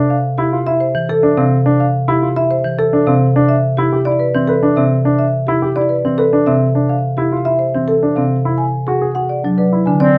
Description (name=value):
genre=classical, minimalist pattern music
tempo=106 BPM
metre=3/4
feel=straight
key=unclear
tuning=A4 = 440 Hz
part: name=dark grand piano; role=arpeggios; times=0.0-10.2 s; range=C4 to D5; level=-19 LUFS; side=equal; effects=none
part: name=marimba with medium mallets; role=melody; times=0.1-10.2 s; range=G4 to G#5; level=-20 LUFS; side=equal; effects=none
part: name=marimba with medium mallets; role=accompaniment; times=0.9-10.1 s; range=C3 to F#3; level=-20 LUFS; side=equal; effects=none
part: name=warm oboe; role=second line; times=10.0-10.2 s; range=C4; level=-21 LUFS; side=equal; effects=none
room=light reverb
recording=none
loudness=-15 LUFS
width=mono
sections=0.0-10.0 A section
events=none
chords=0.0 Dm9; 3.2 Cadd9; 6.6 Dm9; 8.3 E7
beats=0.38 0.95 | 1.52 2.08 2.65 | 3.21 3.78 4.35 | 4.91 5.48 6.04 | 6.61 7.18 7.74 | 8.31 8.87 9.44 | 10.01